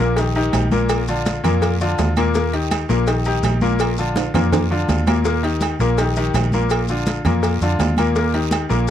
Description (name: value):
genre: latin, salsa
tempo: 165 BPM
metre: 4/4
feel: straight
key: Eb major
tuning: A4 = 444 Hz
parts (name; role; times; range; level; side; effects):
- bright upright piano; accompaniment; 0.0-8.8 s; Bb2 to Bb4; -20 LUFS; left 3 dB; none
- vintage muted fingered electric bass; bass; 0.0-8.9 s; Bb1 to F2; -20 LUFS; right 1 dB; none
- agogo bells and timbales; percussion; 0.2-8.7 s; none; -27 LUFS; right 11 dB; none
- congas; percussion; 0.2-8.9 s; none; -25 LUFS; equal; none
- cowbell; percussion; 0.2-8.9 s; none; -26 LUFS; left 4 dB; none
- guiro; percussion; 0.2-8.9 s; none; -35 LUFS; right 24 dB; none
- maracas; percussion; 0.2-8.9 s; none; -37 LUFS; left 12 dB; none
room: little or no reverb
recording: dry, close 1970s-style studio recording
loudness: -16 LUFS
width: side -10 dB against mid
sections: 0.0-8.9 A section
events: drum fill 4.2-5.3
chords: 0.0 Eb; 0.9 Bb; 2.4 Eb; 3.8 Bb; 5.3 Eb; 6.7 Bb; 8.2 Eb